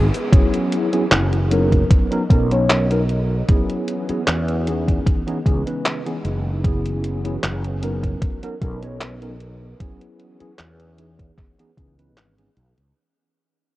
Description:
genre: vaporwave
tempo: 76 BPM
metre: 4/4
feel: straight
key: C# dorian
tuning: A4 = 437 Hz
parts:
  - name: soft string machine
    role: sustained chords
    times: 0.0-12.9 s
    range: C#3 to A#4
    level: -31 LUFS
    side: equal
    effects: phaser, ensemble chorus
  - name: fretless electric bass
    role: bass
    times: 0.0-12.9 s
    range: F#1 to E2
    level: -21 LUFS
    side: equal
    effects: lush chorus, low-pass filter
  - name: detuned 8-bit digital drum machine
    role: drums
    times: 0.1-12.9 s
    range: cabasa, handclaps, hi-hat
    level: -24 LUFS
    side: equal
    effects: overdrive
  - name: tine electric piano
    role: accompaniment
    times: 0.3-12.5 s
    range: E3 to C#5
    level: -23 LUFS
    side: equal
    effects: medium stereo tremolo, wide subtle chorus, tape echo
  - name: electronic kick drum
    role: drums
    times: 0.3-11.9 s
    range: none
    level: -16 LUFS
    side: equal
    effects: overdrive
room: light reverb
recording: worn, warbling old tape, cassette tape, warbly pitch drift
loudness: -17 LUFS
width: side -17 dB against mid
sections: 0.3-13.0 A section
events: fade-out 0.3-13.0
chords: 0.3 F#9sus4; 1.9 Bmaj9; 3.5 E69; 5.1 C#m9; 6.6 F#9sus4; 8.2 Bmaj9; 9.8 E69; 11.4 C#m9

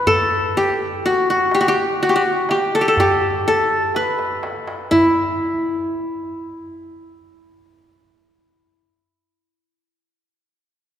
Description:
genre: Arabic maqam ensemble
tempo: 124 BPM (eighths)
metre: 10/8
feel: straight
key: unclear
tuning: A4 = 440 Hz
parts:
  - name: qanun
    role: melody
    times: 0.0-9.9 s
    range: E4 to C5+50c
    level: -16 LUFS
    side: left 1 dB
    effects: none
  - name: darbuka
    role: percussion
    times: 0.1-5.4 s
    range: none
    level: -30 LUFS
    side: right 1 dB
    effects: none
room: wet church reverb, RT60 3.4 s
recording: recorded in a church or concert hall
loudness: -16 LUFS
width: side -10 dB against mid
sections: 0.0-4.9 A section; 4.9-9.8 B section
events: drum fill 3.9-4.9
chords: none

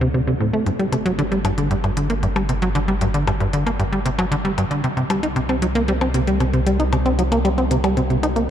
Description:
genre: ambient, sequencer-driven space music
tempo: 115 BPM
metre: 4/4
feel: straight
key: G harmonic minor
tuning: A4 = 440 Hz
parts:
  - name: tight sequencer bass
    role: riff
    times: 0.0-8.4 s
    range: G2 to Eb4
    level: -18 LUFS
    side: equal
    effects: analog delay
  - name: warm sub bass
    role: bass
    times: 0.0-8.5 s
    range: G1 to D2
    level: -24 LUFS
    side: equal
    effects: none
  - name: electronic hi-hat and percussion blips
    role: percussion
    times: 0.7-8.5 s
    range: none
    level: -31 LUFS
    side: left 4 dB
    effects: analog delay
room: moderate huge ambient reverb, RT60 7.9 s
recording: dark, warm production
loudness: -17 LUFS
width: side -10 dB against mid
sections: 0.0-8.5 A section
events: none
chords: 0.0 D5; 0.7 G5; 4.8 C5

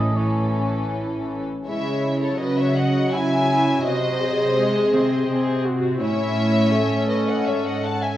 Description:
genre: cinematic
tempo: 82 BPM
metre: 3/4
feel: rubato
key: C# minor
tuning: A4 = 439 Hz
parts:
  - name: warm studio violin section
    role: melody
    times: 0.0-8.2 s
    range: A4 to A5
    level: -27 LUFS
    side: left 2 dB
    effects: none
  - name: mellow cor anglais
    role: second line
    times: 0.0-0.9 s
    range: C#5 to D#5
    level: -31 LUFS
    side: right 2 dB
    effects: none
  - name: warm studio violin section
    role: second line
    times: 0.0-8.2 s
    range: C#4 to F#5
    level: -28 LUFS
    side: left 3 dB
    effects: none
  - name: warm studio viola section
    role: accompaniment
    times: 0.0-8.2 s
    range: E3 to A4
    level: -23 LUFS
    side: equal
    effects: none
  - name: dark studio double bass section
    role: bass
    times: 0.0-1.4 s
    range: A1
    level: -27 LUFS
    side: right 1 dB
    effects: none
  - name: warm studio cello section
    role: bass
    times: 0.0-8.2 s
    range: G#2 to C#3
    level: -24 LUFS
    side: right 1 dB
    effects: none
room: moderate recital hall reverb, RT60 1.4 s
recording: worn, warbling old tape, cassette tape, warbly pitch drift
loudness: -19 LUFS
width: side -13 dB against mid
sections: 0.0-1.7 A section; 1.7-8.2 A section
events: none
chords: 0.0 A; 1.7 C#m; 3.9 G#7/B#; 6.0 A

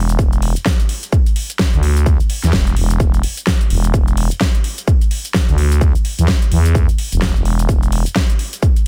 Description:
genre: bass house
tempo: 128 BPM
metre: 4/4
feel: swing 59% on 16ths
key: unclear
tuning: A4 = 440 Hz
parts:
  - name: growling FM bass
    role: bass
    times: 0.0-8.0 s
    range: E1 to E2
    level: -17 LUFS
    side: equal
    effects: overdrive, sidechain pumping
  - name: big-room dance drum kit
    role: drums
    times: 0.1-8.8 s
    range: cabasa, hi-hat, snare drum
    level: -24 LUFS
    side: equal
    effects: none
  - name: electronic kick drum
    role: drums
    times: 0.2-8.7 s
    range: none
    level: -17 LUFS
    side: equal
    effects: none
room: little or no reverb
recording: dense, heavily limited modern master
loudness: -16 LUFS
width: mono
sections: 0.0-8.9 A section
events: none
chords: none

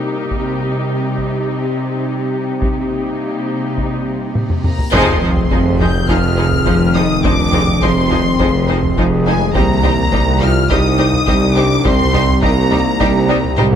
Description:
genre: cinematic, hybrid orchestral and electronic film score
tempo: 104 BPM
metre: 4/4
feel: straight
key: unclear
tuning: A4 = 440 Hz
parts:
  - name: rich symphonic viola section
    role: accompaniment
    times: 0.0-13.7 s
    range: F3 to G4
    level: -23 LUFS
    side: equal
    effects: none
  - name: warbly tape-like pad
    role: sustained chords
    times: 0.0-13.8 s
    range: Eb3 to Bb4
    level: -21 LUFS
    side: left 1 dB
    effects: chorus, built-in reverb
  - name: rich symphonic cello section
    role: bass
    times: 0.0-13.8 s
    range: C2 to C3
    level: -20 LUFS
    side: right 1 dB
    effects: none
  - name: solo taiko drums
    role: drums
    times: 0.3-13.8 s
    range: none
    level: -20 LUFS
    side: equal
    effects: none
  - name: reverse cymbal and sub drop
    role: sound effects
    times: 4.7-7.2 s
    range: none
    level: -24 LUFS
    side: equal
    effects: none
  - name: warm symphonic violin section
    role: melody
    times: 4.6-13.6 s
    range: Ab5 to G6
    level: -20 LUFS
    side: left 2 dB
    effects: none
  - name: mellow French horn section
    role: sustained chords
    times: 4.7-13.6 s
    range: Ab3 to G4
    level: -22 LUFS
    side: left 5 dB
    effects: none
  - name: rich symphonic violin section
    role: second line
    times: 4.9-13.7 s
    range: G4 to C5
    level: -24 LUFS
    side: left 2 dB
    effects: none
  - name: clear symphonic double bass section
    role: bass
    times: 4.9-13.8 s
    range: F1 to C2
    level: -22 LUFS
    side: right 2 dB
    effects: none
  - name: detuned saw bass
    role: bass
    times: 4.9-13.8 s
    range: F1 to C2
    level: -24 LUFS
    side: equal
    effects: none
  - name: mellow tuba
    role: bass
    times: 4.9-13.8 s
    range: F1 to C2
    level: -21 LUFS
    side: right 4 dB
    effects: none
room: light reverb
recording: none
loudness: -12 LUFS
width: side -8 dB against mid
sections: 0.0-4.9 A section; 4.9-13.8 B section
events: drum fill 4.4-4.9, 13.6; reverse cymbal 4.7; band accent 4.9-5.5; impact 4.9-7.2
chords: 0.3 Cm; 2.6 Eb/C; 4.9 Fm7; 9.5 Cm7

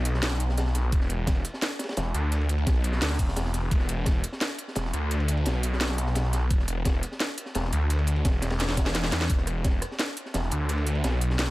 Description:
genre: dark technical drum and bass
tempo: 172 BPM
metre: 4/4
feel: straight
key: unclear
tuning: A4 = 440 Hz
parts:
  - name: snarling distorted saw bass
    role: bass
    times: 0.0-11.5 s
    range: E1 to E2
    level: -26 LUFS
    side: equal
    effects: sidechain pumping
  - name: crunchy breakbeat drum kit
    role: drums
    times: 0.1-11.5 s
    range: hi-hat, ride cymbal, snare drum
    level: -36 LUFS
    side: equal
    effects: high-pass filter on cymbals, high-pass filter on hats, high-pass filter on snare, high-pass filter on room
  - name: drum and bass drum kit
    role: drums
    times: 0.1-11.5 s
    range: hi-hat, rim click, snare drum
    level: -30 LUFS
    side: equal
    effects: none
  - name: electronic kick drum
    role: drums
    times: 0.9-4.1, 6.5-9.7 s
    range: none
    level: -24 LUFS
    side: equal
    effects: none
room: little or no reverb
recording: none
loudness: -24 LUFS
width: side -18 dB against mid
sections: 0.0-11.5 A section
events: drum fill 8.6-9.3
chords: none

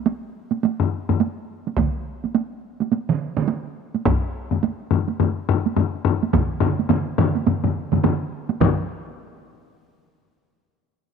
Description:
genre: japanese traditional, taiko drum ensemble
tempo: 105 BPM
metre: 4/4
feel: swing 60% on 16ths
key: none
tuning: none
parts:
  - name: taiko ensemble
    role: percussion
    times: 0.1-8.9 s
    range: none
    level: -23 LUFS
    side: right 9 dB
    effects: none
  - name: solo taiko drums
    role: percussion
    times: 0.8-9.1 s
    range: none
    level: -21 LUFS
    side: left 7 dB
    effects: none
  - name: taiko ensemble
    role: percussion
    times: 1.8-9.1 s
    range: none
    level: -24 LUFS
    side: right 8 dB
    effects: none
  - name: taiko ensemble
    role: percussion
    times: 1.8-8.9 s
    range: none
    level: -25 LUFS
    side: right 1 dB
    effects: none
room: light reverb, small room ambience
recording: 1960s-style stereo with parts hard left and right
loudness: -20 LUFS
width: side -6 dB against mid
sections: 0.0-8.6 A section; 8.6-10.9 B section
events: none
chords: none

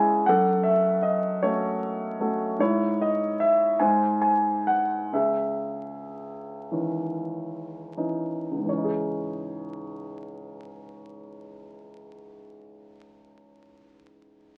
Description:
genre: classical, lyrical solo piano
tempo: 27-52 BPM (dotted quarters)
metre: 6/8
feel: rubato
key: C# minor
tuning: A4 = 442 Hz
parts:
  - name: warm concert grand piano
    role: solo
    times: 0.0-14.6 s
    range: C#2 to G#5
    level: -26 LUFS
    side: equal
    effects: none
room: wet small room reverb, RT60 0.5 s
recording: very old 78 rpm record, vinyl crackle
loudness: -25 LUFS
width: mono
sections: 0.0-8.7 A section; 8.7-13.0 B section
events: slowing down 2.6-8.7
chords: 0.3 F#m; 2.6 C#madd9/G#; 3.8 G#; 5.1 C#madd9

